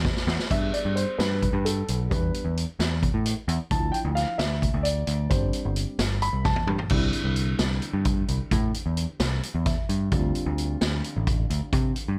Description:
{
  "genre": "progressive instrumental, band music in an uneven meter",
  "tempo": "262 BPM (eighths)",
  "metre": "7/8",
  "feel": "straight",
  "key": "unclear",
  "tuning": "A4 = 439 Hz",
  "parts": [
    { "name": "overdriven picked electric bass", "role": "bass", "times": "0.0-12.2 s", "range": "G1 to C3", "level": "-28 LUFS", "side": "equal", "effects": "none" },
    { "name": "street-band drum kit", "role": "drums", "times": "0.0-12.1 s", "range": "crash cymbal, hi-hat, kick drum, snare drum, toms", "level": "-30 LUFS", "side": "equal", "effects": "none" },
    { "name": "dark concert grand piano", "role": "accompaniment", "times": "0.5-12.2 s", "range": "D3 to B5", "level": "-33 LUFS", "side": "equal", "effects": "none" }
  ],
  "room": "little or no reverb",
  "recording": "none",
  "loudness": "-26 LUFS",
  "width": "mono",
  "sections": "0.0-6.9 A section; 6.9-12.2 B section",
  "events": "drum fill 0.0-0.5, 6.5-6.9; grand piano solo 0.0-6.9; grand piano fill 9.4-10.1",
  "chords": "0.0 N.C.; 0.5 G; 2.1 Em7; 3.7 Dmadd9; 5.3 Gsus4; 6.9 C; 10.1 Dm"
}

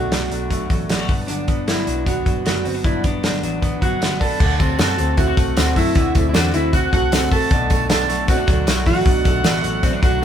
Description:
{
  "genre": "jangly indie pop",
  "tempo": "154 BPM",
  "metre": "4/4",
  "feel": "straight",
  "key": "D mixolydian",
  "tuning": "A4 = 441 Hz",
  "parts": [
    { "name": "clean electric guitar", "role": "melody", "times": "0.0-10.2 s", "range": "D4 to A4", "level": "-23 LUFS", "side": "right 1 dB", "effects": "none" },
    { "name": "picked plugged-in twelve-string acoustic guitar", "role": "accompaniment", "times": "0.0-10.2 s", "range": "G2 to F#4", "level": "-27 LUFS", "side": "right 4 dB", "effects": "none" },
    { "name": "electric guitar through a small old amp", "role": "arpeggios", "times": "0.0-10.2 s", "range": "G2 to F#4", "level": "-26 LUFS", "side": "left 3 dB", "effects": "none" },
    { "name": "vintage muted picked electric bass", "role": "bass", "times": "0.0-10.2 s", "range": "F#1 to F#2", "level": "-24 LUFS", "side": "equal", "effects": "none" },
    { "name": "loose indie drum kit", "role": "drums", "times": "0.1-10.1 s", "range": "crash cymbal, hi-hat, kick drum, snare drum", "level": "-19 LUFS", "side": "equal", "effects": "none" },
    { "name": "bright trumpet", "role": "second line", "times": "3.8-10.2 s", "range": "D5 to A5", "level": "-26 LUFS", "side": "right 4 dB", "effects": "none" },
    { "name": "tambourine", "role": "percussion", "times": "4.4-10.1 s", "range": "none", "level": "-38 LUFS", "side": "left 8 dB", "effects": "none" }
  ],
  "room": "light reverb",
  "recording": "band playing live in one room",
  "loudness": "-16 LUFS",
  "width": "side -9 dB against mid",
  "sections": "0.0-4.4 A section; 4.4-10.2 B section",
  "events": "none",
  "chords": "0.0 Bm7; 1.1 Gmaj7; 4.4 D7; 7.5 Bm7"
}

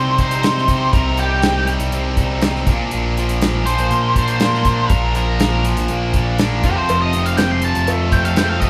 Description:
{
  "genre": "classic rock",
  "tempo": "121 BPM",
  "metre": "4/4",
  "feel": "straight",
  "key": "unclear",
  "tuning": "A4 = 440 Hz",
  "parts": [
    { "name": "octave-fuzz lead guitar", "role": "melody", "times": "0.0-8.7 s", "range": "G4 to C6", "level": "-22 LUFS", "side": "equal", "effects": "distortion" },
    { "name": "crunchy overdriven guitar", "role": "riff", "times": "0.0-8.7 s", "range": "F2 to Eb4", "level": "-25 LUFS", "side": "equal", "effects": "none" },
    { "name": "tight distorted guitar", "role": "riff", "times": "0.0-8.7 s", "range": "F2 to Eb4", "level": "-26 LUFS", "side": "equal", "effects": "distortion" },
    { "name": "growling picked electric bass", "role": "bass", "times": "0.0-8.7 s", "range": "F1 to C3", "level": "-23 LUFS", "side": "equal", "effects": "overdrive" },
    { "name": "damped 70s drum kit", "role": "drums", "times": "0.2-8.7 s", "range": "hi-hat, kick drum, snare drum", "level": "-22 LUFS", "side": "equal", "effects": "none" },
    { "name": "bright tonewheel organ", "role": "sustained chords", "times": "6.9-8.7 s", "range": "C4 to C5", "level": "-35 LUFS", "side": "equal", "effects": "none" },
    { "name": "cowbell", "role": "percussion", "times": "6.9-8.5 s", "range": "none", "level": "-32 LUFS", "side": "equal", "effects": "none" }
  ],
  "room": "wet large studio reverb, RT60 1.1 s",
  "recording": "band playing live in one room",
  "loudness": "-17 LUFS",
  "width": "mono",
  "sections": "0.0-8.7 A section",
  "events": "lead electric guitar solo 0.0-8.7",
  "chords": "0.0 Cm; 2.7 Bb; 6.6 F"
}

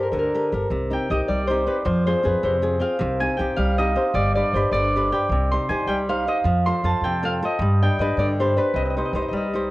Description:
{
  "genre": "italian folk, Italian serenade",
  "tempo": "104 BPM (dotted quarters)",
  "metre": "6/8",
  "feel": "straight",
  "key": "C harmonic minor",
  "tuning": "A4 = 443 Hz",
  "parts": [
    { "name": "Celtic harp", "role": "melody", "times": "0.0-9.7 s", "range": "G4 to C6", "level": "-22 LUFS", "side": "equal", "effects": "cassette tape" },
    { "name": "flamenco guitar", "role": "accompaniment", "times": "0.0-9.7 s", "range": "C3 to C5", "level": "-26 LUFS", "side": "left 1 dB", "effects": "none" },
    { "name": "upright bass", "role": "bass", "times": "0.1-9.7 s", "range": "G1 to G2", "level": "-24 LUFS", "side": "equal", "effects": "tube saturation" }
  ],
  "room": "light reverb",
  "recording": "home recording on cassette",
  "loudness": "-19 LUFS",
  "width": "side -18 dB against mid",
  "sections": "0.7-9.7 A section",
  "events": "none",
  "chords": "0.0 Gmadd9; 0.7 Cm; 1.9 Fm; 3.0 Cm; 4.2 G; 5.3 Cm; 6.5 F; 7.6 G; 8.8 Cm"
}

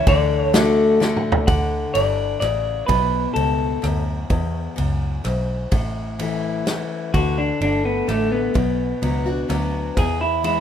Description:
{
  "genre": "honky-tonk and classic country",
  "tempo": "127 BPM",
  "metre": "3/4",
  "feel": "straight",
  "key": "D major",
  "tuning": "A4 = 440 Hz",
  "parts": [
    { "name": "electric guitar through a small old amp", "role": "melody", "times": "0.0-4.0, 7.1-10.6 s", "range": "A3 to F#5", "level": "-21 LUFS", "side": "equal", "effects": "none" },
    { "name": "picked steel-string acoustic guitar", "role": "accompaniment", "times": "0.0-10.6 s", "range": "E2 to F#4", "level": "-23 LUFS", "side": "left 3 dB", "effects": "none" },
    { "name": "vintage muted fingered electric bass", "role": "bass", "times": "0.1-10.6 s", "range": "G1 to E2", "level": "-24 LUFS", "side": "equal", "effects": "none" },
    { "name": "natural country drum kit", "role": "drums", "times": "0.1-10.6 s", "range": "kick drum, ride cymbal, rim click, snare drum, toms", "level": "-25 LUFS", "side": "right 1 dB", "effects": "none" }
  ],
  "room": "light reverb",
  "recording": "minimal, uncompressed stereo recording",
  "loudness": "-18 LUFS",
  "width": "side -9 dB against mid",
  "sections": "0.0-1.5 A section; 1.5-7.1 B section; 7.1-10.6 C section",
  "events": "drum fill 1.0-1.5",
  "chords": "0.1 D; 2.9 Bm; 4.3 E; 5.7 A; 7.1 D; 8.6 Bm; 10.0 E"
}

